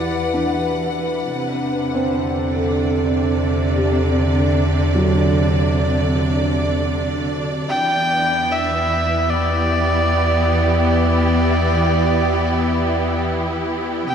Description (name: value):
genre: ambient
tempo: 75 BPM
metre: 4/4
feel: straight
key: E minor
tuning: A4 = 440 Hz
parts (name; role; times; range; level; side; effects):
- bright electric violin; melody; 0.0-0.5, 7.7-14.1 s; D5 to G5; -21 LUFS; equal; shimmer reverb, tape echo
- clear studio string section; sustained chords; 0.0-14.1 s; C3 to F#5; -20 LUFS; right 1 dB; shimmer reverb
- felt-muted upright piano; arpeggios; 0.0-8.5 s; E3 to F#5; -24 LUFS; right 1 dB; shimmer reverb, tape echo
- round analog bass; bass; 0.0-14.1 s; E2; -22 LUFS; equal; none
room: wet lush hall reverb, RT60 2.8 s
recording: none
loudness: -16 LUFS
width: side -8 dB against mid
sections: 0.0-7.7 A section; 7.7-14.1 A section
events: fade-in on felt piano 0.0-7.7; fade-in on analog synth bass 0.0-7.7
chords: 0.0 Em7; 1.3 Csus2/E; 7.7 Em7